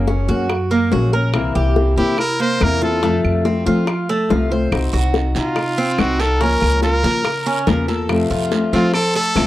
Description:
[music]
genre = latin, Cuban son and guajira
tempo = 142 BPM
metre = 4/4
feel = straight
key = unclear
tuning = A4 = 440 Hz
[part]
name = fingerpicked steel-string acoustic guitar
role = accompaniment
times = 0.0-9.5 s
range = C3 to Bb4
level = -21 LUFS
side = left 3 dB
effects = none
[part]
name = Cuban tres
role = arpeggios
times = 0.0-9.5 s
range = A3 to C5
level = -22 LUFS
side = right 3 dB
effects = none
[part]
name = upright bass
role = bass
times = 0.0-9.5 s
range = Gb1 to F3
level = -20 LUFS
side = equal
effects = none
[part]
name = bongos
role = percussion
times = 0.1-9.5 s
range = none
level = -23 LUFS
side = left 5 dB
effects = none
[part]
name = claves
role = percussion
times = 0.5-9.5 s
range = none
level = -30 LUFS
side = right 5 dB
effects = none
[part]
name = brilliant trumpet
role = melody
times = 2.0-9.5 s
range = F4 to C5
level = -20 LUFS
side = equal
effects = none
[part]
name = guiro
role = percussion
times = 4.7-9.5 s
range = none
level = -32 LUFS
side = right 6 dB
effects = none
[sound]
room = small room ambience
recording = dry, close 1970s-style studio recording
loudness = -15 LUFS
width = side -14 dB against mid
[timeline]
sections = 0.0-9.5 A section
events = none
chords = 0.0 Gbadd9; 1.3 C7; 3.0 F; 4.7 Cdim; 6.4 Bbm/Db; 8.1 F

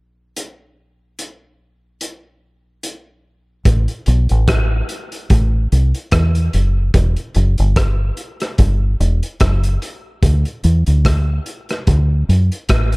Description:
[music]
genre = dub reggae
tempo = 73 BPM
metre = 4/4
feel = swing 56% on 16ths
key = E minor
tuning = A4 = 439 Hz
[part]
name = crunchy breakbeat drum kit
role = drums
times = 0.4-13.0 s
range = hi-hat, kick drum, rim click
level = -18 LUFS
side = equal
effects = none
[part]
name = deep dub fingered electric bass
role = bass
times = 3.7-13.0 s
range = E1 to F#2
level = -14 LUFS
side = equal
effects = none
[sound]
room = little or no reverb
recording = faint mains hum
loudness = -14 LUFS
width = side -28 dB against mid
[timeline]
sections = 0.4-3.7 A section; 3.7-13.0 B section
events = none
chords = none

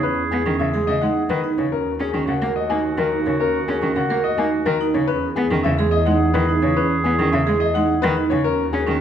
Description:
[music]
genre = classical, minimalist pattern music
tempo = 107 BPM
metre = 3/4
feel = straight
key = E lydian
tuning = A4 = 440 Hz
[part]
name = warm baby grand piano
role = melody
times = 0.0-8.9 s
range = G#4 to G#5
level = -23 LUFS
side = left 8 dB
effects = none
[part]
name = bright clarinet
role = second line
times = 0.0-9.0 s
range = F#4 to G#4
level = -28 LUFS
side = right 4 dB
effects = none
[part]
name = vibraphone with medium mallets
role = arpeggios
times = 0.0-9.0 s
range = C#4 to A#4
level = -23 LUFS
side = right 6 dB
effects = none
[part]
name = rich symphonic double bass section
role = bass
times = 0.0-9.0 s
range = D#2 to E2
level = -25 LUFS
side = right 1 dB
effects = none
[part]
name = rich cello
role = accompaniment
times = 0.3-9.0 s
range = C#3 to C#4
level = -24 LUFS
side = equal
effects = none
[sound]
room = moderate recital hall reverb, RT60 1.7 s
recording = dark, warm production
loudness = -17 LUFS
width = side -9 dB against mid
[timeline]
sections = 0.0-9.0 A section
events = none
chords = 0.0 E6; 1.7 D#m7; 5.1 E6; 8.4 D#m7

